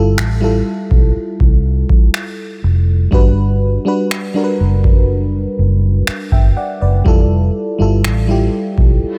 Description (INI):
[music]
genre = contemporary R&B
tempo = 61 BPM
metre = 4/4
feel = straight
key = unclear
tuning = A4 = 440 Hz
[part]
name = mellow FM electric piano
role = accompaniment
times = 0.0-9.2 s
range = G3 to G5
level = -21 LUFS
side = equal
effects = chorus
[part]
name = vintage muted fingered electric bass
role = bass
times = 0.0-9.1 s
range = F1 to C2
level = -16 LUFS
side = equal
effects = none
[part]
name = booming analog drum machine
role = drums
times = 0.2-9.0 s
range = finger snaps, kick drum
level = -16 LUFS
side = equal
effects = none
[part]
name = reverse cymbal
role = sound effects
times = 9.1-9.2 s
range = none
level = -38 LUFS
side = equal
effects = none
[sound]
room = digital ambience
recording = none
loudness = -14 LUFS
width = mono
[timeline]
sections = 0.0-9.2 A section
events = FM electric piano fill 9.0; reverse cymbal 9.1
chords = 0.0 Fmaj9; 3.1 Gmaj7; 7.1 Fmaj9